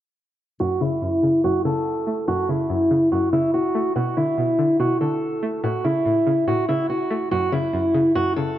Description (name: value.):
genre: hip hop.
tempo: 143 BPM.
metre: 4/4.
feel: half-time.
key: F# minor.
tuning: A4 = 440 Hz.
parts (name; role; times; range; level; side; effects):
fingerpicked steel-string acoustic guitar; melody; 0.6-8.6 s; E4 to A4; -20 LUFS; equal; low-pass filter.
string-like resonator pluck; accompaniment; 0.6-8.6 s; F#2 to A3; -26 LUFS; equal; chorus, low-pass filter.
room: moderate lush hall reverb, RT60 2.7 s.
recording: none.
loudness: -19 LUFS.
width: side -12 dB against mid.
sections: 0.6-8.6 A section.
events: filter sweep 0.6-8.6.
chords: 0.6 F#m; 4.0 Bm7; 5.6 A; 7.3 F#5.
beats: | 0.60 1.02 1.44 1.86 | 2.28 2.70 3.12 3.54 | 3.96 4.38 4.80 5.22 | 5.64 6.06 6.48 6.89 | 7.32 7.73 8.15 8.57.